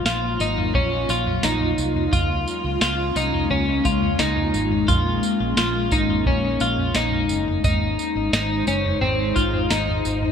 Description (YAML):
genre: dream pop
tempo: 87 BPM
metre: 4/4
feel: straight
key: Ab mixolydian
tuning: A4 = 440 Hz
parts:
  - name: ethereal airy pad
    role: sustained chords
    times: 0.0-10.3 s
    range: Gb3 to C5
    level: -26 LUFS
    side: left 1 dB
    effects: ensemble chorus, built-in reverb
  - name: twelve-string electric guitar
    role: arpeggios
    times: 0.0-10.3 s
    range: C4 to F4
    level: -22 LUFS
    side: left 2 dB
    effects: wide subtle chorus, ping-pong delay
  - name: vintage muted fingered electric bass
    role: bass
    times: 0.0-10.3 s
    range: Gb1 to Db2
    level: -26 LUFS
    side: right 1 dB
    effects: none
  - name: soft vintage rhythm box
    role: drums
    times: 0.1-10.3 s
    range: kick drum, snare drum, tambourine, toms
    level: -25 LUFS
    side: right 1 dB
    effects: none
room: moderate plate reverb, RT60 2.6 s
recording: bright 1980s-style digital production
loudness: -19 LUFS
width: side -7 dB against mid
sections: 0.0-10.3 A section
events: none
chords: 0.0 Gbmaj7; 2.1 Db6; 4.9 Bbm7; 7.6 Ab